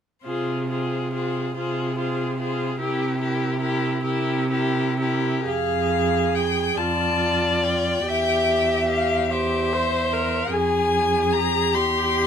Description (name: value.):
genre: classical, slow romantic movement for string quartet.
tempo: 39-50 BPM (dotted quarters).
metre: 6/8.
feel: rubato.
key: F minor.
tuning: A4 = 439 Hz.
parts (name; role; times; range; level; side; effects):
rich violin; melody; 0.2-12.3 s; Bb4 to C6; -26 LUFS; left 6 dB; none.
rich viola; accompaniment; 0.2-12.3 s; E4 to C5; -26 LUFS; right 3 dB; none.
rich violin; second line; 0.3-12.3 s; G4 to E5; -26 LUFS; left 3 dB; none.
rich cello; bass; 0.3-12.3 s; E2 to C3; -26 LUFS; right 3 dB; none.
room: light reverb.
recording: minimal, uncompressed stereo recording.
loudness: -20 LUFS.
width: side -8 dB against mid.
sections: 0.2-5.5 A section; 5.5-12.3 B section.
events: none.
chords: 0.2 Fm/C; 2.8 C7; 5.5 Fm; 6.8 F69; 8.1 C7/E; 10.5 Fm; 11.7 C/E.